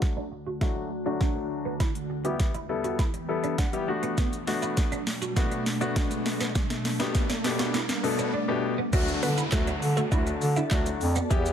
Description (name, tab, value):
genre	dance-pop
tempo	101 BPM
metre	4/4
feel	straight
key	unclear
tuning	A4 = 437 Hz
part	clear baby grand piano	accompaniment	0.0-11.5 s	B2 to B5	-30 LUFS	left 4 dB	sidechain pumping, low-pass filter
part	glassy FM pad	sustained chords	0.3-11.5 s	D2 to B5	-34 LUFS	equal	ensemble chorus, built-in reverb, sidechain pumping, low-pass filter
part	smooth R&B drum kit	drums	0.0-11.5 s	crash cymbal, handclaps, hi-hat, kick drum, shaker, snare drum	-27 LUFS	equal	overdrive
part	riser and downlifter	sound effects	2.0-11.5 s	none	-37 LUFS	right 1 dB	none
part	twelve-string electric guitar	riff	0.2-11.4 s	G3 to F#4	-35 LUFS	right 6 dB	ensemble chorus, low-pass filter
part	mellow bass clarinet	bass	8.9-11.5 s	D2 to D3	-27 LUFS	equal	sidechain pumping
part	mallet-like synth pluck	melody	9.2-10.8 s	A3 to E5	-34 LUFS	equal	chorus, sidechain pumping, ping-pong delay
room	light reverb, digital ambience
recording	none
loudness	-25 LUFS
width	side -8 dB against mid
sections	0.0-8.9 A section; 8.9-11.5 B section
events	build-up 0.0-8.9; drum fill 0.0-8.3; filter sweep 0.0-8.9; riser 2.0-8.9; grand piano fill 3.0-4.2, 7.7-8.9; drop 8.9-11.5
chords	0.0 D; 1.8 Em; 3.9 Bm7; 6.6 Gadd9/B; 8.9 D